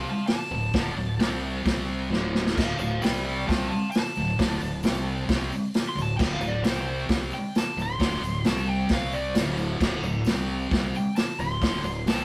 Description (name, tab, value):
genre	garage rock duo or trio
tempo	132 BPM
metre	4/4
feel	straight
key	D minor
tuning	A4 = 440 Hz
part	overdriven slide guitar	melody	0.0-12.2 s	C5 to C6	-34 LUFS	equal	none
part	thick fuzz guitar	riff	0.0-12.2 s	D2 to C4	-31 LUFS	equal	distortion
part	growling fingered electric bass	bass	0.0-12.2 s	D1 to C2	-36 LUFS	equal	overdrive
part	vintage drum kit	drums	0.3-12.2 s	crash cymbal, hi-hat, kick drum, snare drum	-29 LUFS	equal	none
part	tambourine	percussion	2.6-12.2 s	none	-53 LUFS	equal	none
room	moderate small room reverb, RT60 0.6 s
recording	rough rehearsal-room recording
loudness	-26 LUFS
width	mono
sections	0.0-12.2 A section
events	electric slide guitar solo 0.0-12.2; drum fill 2.1-2.6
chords	0.0 D5; 1.2 C5; 2.1 D5; 3.0 C5; 3.5 Dm; 4.8 C5; 5.3 D5; 6.7 C5; 7.1 D5; 8.5 C5; 9.4 D5; 10.3 C5; 10.7 D5